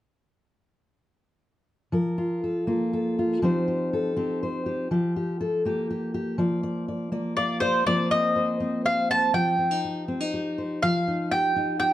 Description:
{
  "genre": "folk",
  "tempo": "122 BPM",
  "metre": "3/4",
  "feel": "straight",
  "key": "F mixolydian",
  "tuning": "A4 = 436 Hz",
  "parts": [
    { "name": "fingerpicked steel-string acoustic guitar", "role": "accompaniment", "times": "1.9-11.9 s", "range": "F3 to F5", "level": "-25 LUFS", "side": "left 1 dB", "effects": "none" },
    { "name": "mandolin", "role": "melody", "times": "7.4-11.9 s", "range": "C5 to A5", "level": "-23 LUFS", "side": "equal", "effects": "none" }
  ],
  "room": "light reverb",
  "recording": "dark, warm production",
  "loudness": "-23 LUFS",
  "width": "side -13 dB against mid",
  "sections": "1.9-7.9 A section; 7.9-11.9 B section",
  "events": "none",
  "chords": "1.9 Fsus4; 3.4 Cm/F; 4.9 Fsus24; 6.4 Bb/F; 7.9 Fsus4; 9.3 Cm/F; 10.8 Eb/F"
}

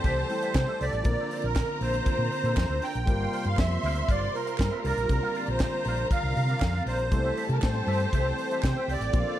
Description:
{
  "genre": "disco",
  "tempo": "119 BPM",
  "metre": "4/4",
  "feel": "straight",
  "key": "unclear",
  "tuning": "A4 = 440 Hz",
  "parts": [
    { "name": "musette accordion", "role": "melody", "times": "0.0-9.4 s", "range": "Bb4 to G5", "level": "-30 LUFS", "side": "right 1 dB", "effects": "none" },
    { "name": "warm studio violin section", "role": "second line", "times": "0.0-9.4 s", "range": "F4 to C6", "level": "-36 LUFS", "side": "left 1 dB", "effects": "none" },
    { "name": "electric guitar with an envelope filter", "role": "accompaniment", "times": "0.0-9.4 s", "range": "D4 to F5", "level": "-40 LUFS", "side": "right 3 dB", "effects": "analog chorus" },
    { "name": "warm concert grand piano", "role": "accompaniment", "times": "0.0-9.4 s", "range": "F3 to Bb4", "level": "-37 LUFS", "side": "left 2 dB", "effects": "none" },
    { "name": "warm studio string section", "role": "sustained chords", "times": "0.0-9.4 s", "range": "C3 to A4", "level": "-37 LUFS", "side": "right 1 dB", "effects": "none" },
    { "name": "hollow-body short-scale fingered electric bass", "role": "bass", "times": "0.0-9.2 s", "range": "G1 to C3", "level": "-29 LUFS", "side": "equal", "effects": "none" },
    { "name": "tight funk drum kit", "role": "drums", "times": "0.0-9.3 s", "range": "hi-hat, kick drum, snare drum", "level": "-29 LUFS", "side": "equal", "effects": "none" },
    { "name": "group handclap", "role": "percussion", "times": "0.6-8.7 s", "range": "none", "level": "-43 LUFS", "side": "right 6 dB", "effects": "none" }
  ],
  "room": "light reverb",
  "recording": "dark, warm production",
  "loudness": "-24 LUFS",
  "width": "side -12 dB against mid",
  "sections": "0.0-9.4 A section",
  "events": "none",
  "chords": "0.0 Am7/C; 1.1 Bbmaj9; 3.1 Gm7; 4.8 C9sus4; 7.1 Am7/C"
}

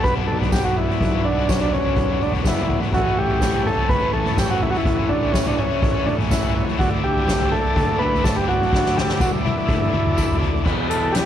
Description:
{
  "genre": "psychedelic rock",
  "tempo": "124 BPM",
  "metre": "4/4",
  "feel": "straight",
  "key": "unclear",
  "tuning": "A4 = 440 Hz",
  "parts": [
    { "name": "combo organ", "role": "melody", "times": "0.0-11.3 s", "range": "C#4 to B4", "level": "-22 LUFS", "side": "equal", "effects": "tape echo" },
    { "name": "combo organ", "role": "sustained chords", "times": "0.0-11.3 s", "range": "G4 to D6", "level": "-32 LUFS", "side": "right 10 dB", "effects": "none" },
    { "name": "overdriven electric guitar", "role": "riff", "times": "0.0-11.3 s", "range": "E2 to F#4", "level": "-27 LUFS", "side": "left 12 dB", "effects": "harmonic tremolo" },
    { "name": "fuzz picked electric bass", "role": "bass", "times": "0.0-11.3 s", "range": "E1 to E2", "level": "-26 LUFS", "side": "equal", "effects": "overdrive" },
    { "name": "soft-mallet drum kit", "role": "drums", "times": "0.0-11.3 s", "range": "crash cymbal, hi-hat, kick drum, snare drum, toms", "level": "-21 LUFS", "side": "right 1 dB", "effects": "none" },
    { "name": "tambourine", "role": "percussion", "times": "0.5-10.3 s", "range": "none", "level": "-38 LUFS", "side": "right 13 dB", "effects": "none" },
    { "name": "pedal harmonium", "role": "drone", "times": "10.7-11.3 s", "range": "E2 to B2", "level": "-33 LUFS", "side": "left 1 dB", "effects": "none" }
  ],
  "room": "light reverb",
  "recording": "1960s-style stereo with parts hard left and right",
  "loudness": "-17 LUFS",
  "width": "side -10 dB against mid",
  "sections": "0.0-10.7 A section",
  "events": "drum fill 8.7-10.7",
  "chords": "0.0 Bm; 2.9 A; 6.8 Dsus2; 10.7 Em"
}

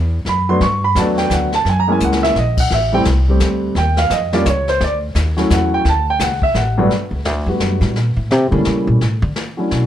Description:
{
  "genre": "jazz piano trio",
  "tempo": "172 BPM",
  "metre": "3/4",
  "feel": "swing 62% on 8ths",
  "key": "D major",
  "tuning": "A4 = 441 Hz",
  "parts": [
    { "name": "upright bass", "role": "bass", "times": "0.0-9.9 s", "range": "A1 to D3", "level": "-17 LUFS", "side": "equal", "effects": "none" },
    { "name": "warm grand piano", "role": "melody", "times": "0.3-9.9 s", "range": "G2 to C#6", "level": "-16 LUFS", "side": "right 1 dB", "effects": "plate reverb" },
    { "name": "jazz brush drum kit", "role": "drums", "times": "0.3-9.9 s", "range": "brushed snare drum, crash cymbal, hi-hat, kick drum, snare drum", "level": "-23 LUFS", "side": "left 2 dB", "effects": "none" }
  ],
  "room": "light reverb",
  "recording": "none",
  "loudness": "-14 LUFS",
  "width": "side -11 dB against mid",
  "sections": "0.0-6.9 A section; 6.9-9.9 A section",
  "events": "grand piano solo 0.0-6.9; drum fill 2.0-2.4; upright bass solo 6.9-9.9",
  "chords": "0.0 D69 (rootless); 0.6 Gmaj7; 1.7 F#9; 2.7 Am7; 3.8 Eb9; 4.8 Dmaj7; 6.9 Gmaj9; 8.0 A7b9; 9.0 Dmaj9"
}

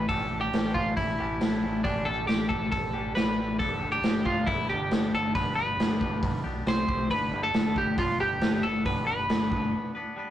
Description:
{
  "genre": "quiet-loud alternative rock",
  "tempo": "137 BPM",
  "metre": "4/4",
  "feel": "straight",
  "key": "unclear",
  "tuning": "A4 = 438 Hz",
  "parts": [
    { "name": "twelve-string electric guitar", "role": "melody", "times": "0.0-9.9 s", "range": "D4 to C5", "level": "-29 LUFS", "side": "equal", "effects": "none" },
    { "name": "twangy electric guitar", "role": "arpeggios", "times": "0.0-10.3 s", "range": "G2 to B4", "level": "-37 LUFS", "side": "left 1 dB", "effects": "none" },
    { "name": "growling fingered electric bass", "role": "bass", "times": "0.0-9.7 s", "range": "G1 to C2", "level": "-36 LUFS", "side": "equal", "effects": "overdrive" },
    { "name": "raw garage drum kit", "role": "drums", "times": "0.1-9.6 s", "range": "hi-hat, kick drum, snare drum", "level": "-28 LUFS", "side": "equal", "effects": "none" }
  ],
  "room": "light reverb",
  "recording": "rough rehearsal-room recording, tube saturation",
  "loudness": "-25 LUFS",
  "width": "side -11 dB against mid",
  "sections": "0.0-10.3 A section",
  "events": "break 9.7-10.3",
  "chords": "0.1 Dsus4/A; 3.6 G; 6.7 C5; 7.1 G"
}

